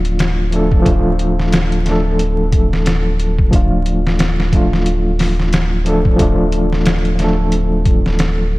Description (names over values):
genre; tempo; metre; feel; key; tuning
trip hop; 90 BPM; 4/4; swing 58% on 16ths; D minor; A4 = 440 Hz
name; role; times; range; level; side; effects
overdriven reed electric piano; accompaniment; 0.0-8.6 s; F3 to A4; -17 LUFS; equal; tremolo, low-pass filter, tape echo
soft dub sub bass; bass; 0.0-8.6 s; D1; -17 LUFS; equal; none
trip hop sampler-style drum kit; drums; 0.0-8.4 s; hi-hat, kick drum, snare drum; -17 LUFS; equal; none
room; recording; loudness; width
light reverb; vinyl crackle; -13 LUFS; side -20 dB against mid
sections
0.0-8.6 A section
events
none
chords
0.0 Dm